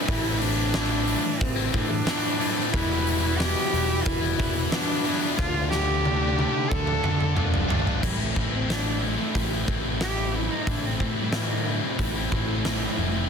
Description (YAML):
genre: quiet-loud alternative rock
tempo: 91 BPM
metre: 4/4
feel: straight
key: A minor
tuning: A4 = 440 Hz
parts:
  - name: dark cello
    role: melody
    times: 0.0-13.3 s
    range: A2 to A4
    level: -29 LUFS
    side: equal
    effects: slapback echo
  - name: high-gain distorted guitar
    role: riff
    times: 0.0-13.3 s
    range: A2 to F4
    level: -30 LUFS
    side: left 13 dB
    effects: distortion
  - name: thick fuzz guitar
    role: riff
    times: 0.0-13.3 s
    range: A2 to F4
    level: -32 LUFS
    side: right 12 dB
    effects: distortion
  - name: tight distorted guitar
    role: riff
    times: 0.0-8.0 s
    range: E2 to D4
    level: -33 LUFS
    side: equal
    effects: distortion
  - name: overdriven picked electric bass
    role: bass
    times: 0.1-13.2 s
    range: E1 to D3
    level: -28 LUFS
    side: equal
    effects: none
  - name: huge arena drum kit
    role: drums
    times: 0.1-12.8 s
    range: crash cymbal, hi-hat, kick drum, snare drum, toms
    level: -28 LUFS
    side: equal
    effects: soft clipping on kick
room: light reverb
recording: dense, heavily limited modern master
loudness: -22 LUFS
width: side -6 dB against mid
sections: 0.0-8.0 A section; 8.0-13.3 B section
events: drum fill 5.4-8.0; cello solo 8.0-13.3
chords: 0.0 Am; 2.7 Em7; 5.4 Dm; 8.0 Am